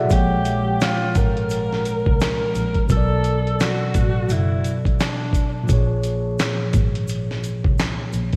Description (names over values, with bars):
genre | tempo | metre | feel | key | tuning
lo-fi hip hop | 86 BPM | 4/4 | swing 59% on 16ths | unclear | A4 = 441 Hz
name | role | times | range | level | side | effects
mellow tine electric piano | accompaniment | 0.0-8.4 s | Bb2 to F#5 | -26 LUFS | equal | low-pass filter
breathy tenor saxophone | melody | 0.1-5.5 s | D4 to Bb4 | -28 LUFS | equal | low-pass filter, tape echo
dark double bass | bass | 0.1-8.3 s | F#1 to C2 | -26 LUFS | equal | none
dusty soul sampler-style drum kit | drums | 0.1-8.4 s | handclaps, hi-hat, kick drum, snare drum | -24 LUFS | equal | none
tube shaker | percussion | 0.1-8.3 s | none | -49 LUFS | equal | none
room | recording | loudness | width
moderate lush hall reverb, RT60 2.8 s | dreamy mix soaked in reverb, vinyl crackle | -20 LUFS | mono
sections
0.0-8.4 A section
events
none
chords
0.1 Bbm7; 2.9 Bm7; 5.7 Bbm7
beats
| 0.11 0.80 1.50 2.20 | 2.90 3.60 4.29 4.99 | 5.69 6.39 7.08 7.78